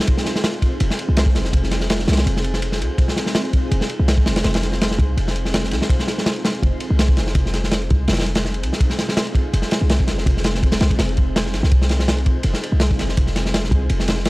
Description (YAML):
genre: drum and bass, jungle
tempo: 165 BPM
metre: 4/4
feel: swing 53% on 16ths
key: F minor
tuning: A4 = 440 Hz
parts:
  - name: crunchy breakbeat drum kit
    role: drums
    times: 0.0-14.3 s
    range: kick drum, ride cymbal, snare drum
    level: -18 LUFS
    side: equal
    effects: none
  - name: warm 808-style bass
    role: bass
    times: 0.8-14.3 s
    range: F1 to C2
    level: -20 LUFS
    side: equal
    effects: tube saturation
room: small room reverb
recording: dry, gritty hardware recording, transformer saturation, vinyl crackle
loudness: -16 LUFS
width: side -21 dB against mid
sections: 0.0-8.8 A section; 8.8-14.3 A section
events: drop 0.0-8.8, 8.8-14.3; kick drops out 8.1-8.8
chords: none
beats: | 0.08 0.44 0.81 1.17 | 1.53 1.90 2.26 2.62 | 2.99 3.35 3.72 4.08 | 4.44 4.81 5.17 5.54 | 5.90 6.26 6.62 6.99 | 7.35 7.72 8.08 8.44 | 8.81 9.17 9.54 9.90 | 10.26 10.62 10.99 11.35 | 11.72 12.08 12.44 12.81 | 13.17 13.54 13.90 14.26